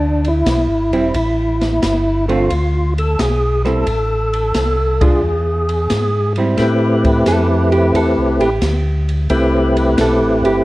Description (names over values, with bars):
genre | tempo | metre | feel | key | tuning
soul jazz organ trio | 88 BPM | 4/4 | swing 69% on 8ths | A minor | A4 = 440 Hz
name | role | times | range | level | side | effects
percussive tonewheel organ | melody | 0.0-10.6 s | A3 to B4 | -16 LUFS | equal | slow rotary speaker, overdrive, chorus vibrato
mellow tonewheel organ | bass | 0.0-10.6 s | E1 to A2 | -18 LUFS | equal | overdrive, chorus vibrato, slow rotary speaker
open jazz drum kit | drums | 0.2-10.6 s | hi-hat, kick drum, ride cymbal, snare drum | -23 LUFS | equal | none
archtop guitar, miked and amplified | accompaniment | 0.9-10.6 s | D3 to A4 | -19 LUFS | right 2 dB | none
room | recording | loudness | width
light reverb | worn, warbling old tape, cassette tape, warbly pitch drift | -13 LUFS | side -18 dB against mid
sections
0.0-6.6 A section; 6.6-10.6 B section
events
band accent 4.9-5.2; hollow-body jazz guitar solo 6.6-10.6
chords
0.0 E7; 1.1 Am7; 2.5 Bm7b5; 3.9 Am; 5.2 E; 6.6 Am7